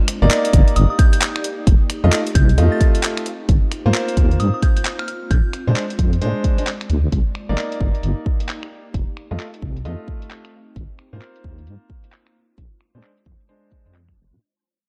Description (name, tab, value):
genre	UK garage, two-step garage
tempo	132 BPM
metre	4/4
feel	swing 62% on 16ths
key	unclear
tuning	A4 = 441 Hz
part	ethereal airy pad	sustained chords	0.0-14.4 s	Ab3 to D5	-35 LUFS	equal	ensemble chorus, built-in reverb, sidechain pumping
part	breakbeat sampler-style drum kit	drums	0.1-14.2 s	finger snaps, handclaps, hi-hat	-27 LUFS	equal	low-pass filter on hats, small room reverb, low-pass filter on perc, low-pass filter on snare
part	clear grand piano	stabs	0.2-13.9 s	Ab3 to Eb5	-27 LUFS	equal	low-pass filter
part	deep soft wobble bass	bass	0.2-14.4 s	F1 to Bb2	-19 LUFS	equal	chorus, sidechain pumping
part	electronic kick drum	drums	0.5-14.2 s	none	-18 LUFS	equal	small room reverb
part	soft synth bell	melody	0.8-6.0 s	Eb6 to A6	-31 LUFS	equal	chorus, dub echo
room	digital ambience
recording	dark, warm production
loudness	-18 LUFS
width	mono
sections	0.0-14.4 A section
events	fade-out 0.0-14.4; filter sweep on ambient pad 0.0-14.4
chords	0.0 Cm9 (rootless); 1.7 F7; 3.3 Ab69; 5.1 Bb9; 7.1 Cm9 (rootless); 8.9 F7; 10.5 Ab69; 12.4 Bb9 (rootless)